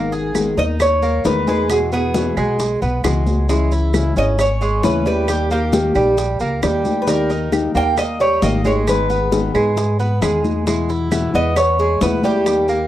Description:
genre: latin, Cuban son and guajira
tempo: 134 BPM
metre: 4/4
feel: straight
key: G# harmonic minor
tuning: A4 = 441 Hz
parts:
  - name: nylon-string guitar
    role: accompaniment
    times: 0.0-12.9 s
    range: B2 to A#4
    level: -21 LUFS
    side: left 4 dB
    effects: none
  - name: Cuban tres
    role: arpeggios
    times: 0.0-12.9 s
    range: G3 to G#4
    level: -21 LUFS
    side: right 3 dB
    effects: none
  - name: upright bass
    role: bass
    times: 0.0-12.9 s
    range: G#1 to G#2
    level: -21 LUFS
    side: equal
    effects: none
  - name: bongos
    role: percussion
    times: 0.1-12.9 s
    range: none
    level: -27 LUFS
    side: left 4 dB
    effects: none
  - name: congas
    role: percussion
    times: 0.1-12.9 s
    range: none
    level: -26 LUFS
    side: left 2 dB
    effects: none
  - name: maracas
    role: percussion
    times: 0.1-12.9 s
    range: none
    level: -34 LUFS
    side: right 4 dB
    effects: none
  - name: claves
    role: percussion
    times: 0.3-12.7 s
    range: none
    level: -30 LUFS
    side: right 9 dB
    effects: none
  - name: Cuban tres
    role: melody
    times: 0.6-12.9 s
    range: G4 to G5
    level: -19 LUFS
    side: equal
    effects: none
room: small room ambience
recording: dry, close 1970s-style studio recording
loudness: -15 LUFS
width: side -13 dB against mid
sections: 0.0-12.9 A section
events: none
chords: 0.0 G#madd9; 1.7 Eadd9; 3.5 C#m; 5.3 D#; 8.9 G#m; 10.7 E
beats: 0.35 0.80 1.25 | 1.70 2.15 2.59 3.04 | 3.49 3.94 4.39 4.83 | 5.28 5.73 6.18 6.63 | 7.08 7.53 7.98 8.42 | 8.87 9.32 9.77 10.22 | 10.67 11.12 11.56 12.01 | 12.46

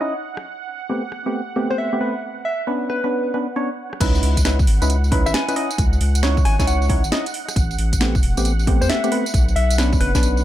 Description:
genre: UK garage, two-step garage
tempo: 135 BPM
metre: 4/4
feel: swing 65% on 16ths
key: unclear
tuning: A4 = 439 Hz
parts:
  - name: warm analog pad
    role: sustained chords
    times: 0.0-10.4 s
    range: F#5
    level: -33 LUFS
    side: right 8 dB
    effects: chorus, sidechain pumping
  - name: percussive organ stab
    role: stabs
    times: 0.0-10.4 s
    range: A3 to D#5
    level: -23 LUFS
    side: right 1 dB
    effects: chorus, tape echo
  - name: house drum kit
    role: drums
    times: 0.4-10.4 s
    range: crash cymbal, hi-hat, rim click, snare drum, tambourine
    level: -25 LUFS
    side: right 1 dB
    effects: small room ambience
  - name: soft struck synth lead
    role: melody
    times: 1.7-10.4 s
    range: B4 to G#5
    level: -25 LUFS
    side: left 2 dB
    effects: chorus, tape echo
  - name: saturated sub bass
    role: bass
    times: 4.0-10.4 s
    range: E1 to E2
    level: -19 LUFS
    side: equal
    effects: sidechain pumping
  - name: electronic kick drum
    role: drums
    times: 4.0-10.2 s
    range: none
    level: -19 LUFS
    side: equal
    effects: small room ambience
room: light reverb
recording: none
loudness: -17 LUFS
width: side -13 dB against mid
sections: 0.0-4.0 A section; 4.0-10.4 B section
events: filter sweep on synth stab 0.0-4.0; drop 4.0-10.4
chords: 0.5 Am9; 2.2 Bmadd9; 4.0 C#m9; 7.6 Am9; 9.3 Bmadd9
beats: 0.01 | 0.45 0.90 1.34 1.78 | 2.23 2.67 3.12 3.56 | 4.01 4.45 4.89 5.34 | 5.78 6.23 6.67 7.12 | 7.56 8.01 8.45 8.89 | 9.34 9.78 10.23

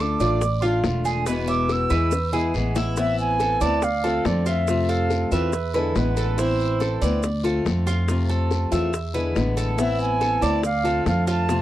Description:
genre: latin, Cuban son and guajira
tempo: 141 BPM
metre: 4/4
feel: straight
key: A minor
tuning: A4 = 441 Hz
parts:
  - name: silver concert flute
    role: melody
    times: 0.0-5.3, 9.8-11.6 s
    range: D5 to E6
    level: -24 LUFS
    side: right 2 dB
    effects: none
  - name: picked acoustic archtop guitar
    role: accompaniment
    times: 0.0-11.6 s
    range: B2 to F4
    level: -25 LUFS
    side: left 4 dB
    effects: none
  - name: Cuban tres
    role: arpeggios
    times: 0.0-11.6 s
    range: E4 to E5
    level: -28 LUFS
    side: right 4 dB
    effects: slapback echo
  - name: upright bass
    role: bass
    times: 0.0-11.6 s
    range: E1 to F2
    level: -24 LUFS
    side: equal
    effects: none
  - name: guiro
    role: percussion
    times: 0.2-11.6 s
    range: none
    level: -40 LUFS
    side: left 8 dB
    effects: none
  - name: maracas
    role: percussion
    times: 0.2-11.6 s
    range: none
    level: -41 LUFS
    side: right 11 dB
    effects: none
  - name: bongos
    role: percussion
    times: 0.4-11.6 s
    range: none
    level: -29 LUFS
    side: left 5 dB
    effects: none
  - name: warm flugelhorn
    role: second line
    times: 5.3-7.2 s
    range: A4 to C5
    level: -28 LUFS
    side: right 8 dB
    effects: none
room: little or no reverb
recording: dry, close 1970s-style studio recording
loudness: -20 LUFS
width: side -13 dB against mid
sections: 0.0-3.0 A section; 3.0-11.6 B section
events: flute solo 0.0-3.0; drum fill 2.1-3.0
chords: 0.0 Dm; 1.3 E; 3.0 Amadd9; 3.8 Dm7; 4.7 Fmaj7; 5.5 E7; 6.4 Amadd9; 7.2 Dm7; 8.1 Fmaj7; 8.9 E7; 9.8 Amadd9; 10.6 Dm7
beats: 0.42 0.84 | 1.27 1.70 2.12 2.55 | 2.98 3.40 3.83 4.25 | 4.68 5.11 5.53 5.96 | 6.38 6.81 7.24 7.66 | 8.09 8.51 8.94 9.36 | 9.79 10.21 10.64 11.07 | 11.49

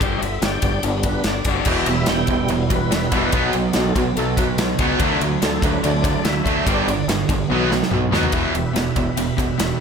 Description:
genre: classic rock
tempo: 144 BPM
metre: 4/4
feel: straight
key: E minor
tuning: A4 = 440 Hz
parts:
  - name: tonewheel organ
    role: sustained chords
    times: 0.0-9.8 s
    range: F#3 to G5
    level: -25 LUFS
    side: equal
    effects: overdrive, chorus vibrato, slow rotary speaker
  - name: raw garage guitar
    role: riff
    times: 0.0-9.8 s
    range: E2 to D4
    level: -24 LUFS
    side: left 6 dB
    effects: overdrive
  - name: growling fingered electric bass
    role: bass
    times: 0.0-9.7 s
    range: E1 to D#2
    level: -26 LUFS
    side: equal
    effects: overdrive
  - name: big rock drum kit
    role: drums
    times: 0.0-9.7 s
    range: crash cymbal, kick drum, ride cymbal, snare drum, toms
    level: -22 LUFS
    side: equal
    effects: none
  - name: tight distorted guitar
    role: riff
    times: 1.7-9.8 s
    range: E2 to B3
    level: -22 LUFS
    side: right 9 dB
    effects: distortion
room: light reverb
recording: none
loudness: -17 LUFS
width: side -6 dB against mid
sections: 0.0-8.3 A section; 8.3-9.8 B section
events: tonewheel organ solo 0.0-8.3; drum fill 7.5-8.3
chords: 0.0 G; 1.7 Em; 3.3 B; 5.0 D; 6.7 G; 7.5 B; 8.3 Em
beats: | 0.01 0.43 0.84 1.26 | 1.67 2.09 2.50 2.92 | 3.33 3.75 4.17 4.58 | 5.00 5.42 5.83 6.25 | 6.66 7.08 7.50 7.91 | 8.33 8.75 9.17 9.58

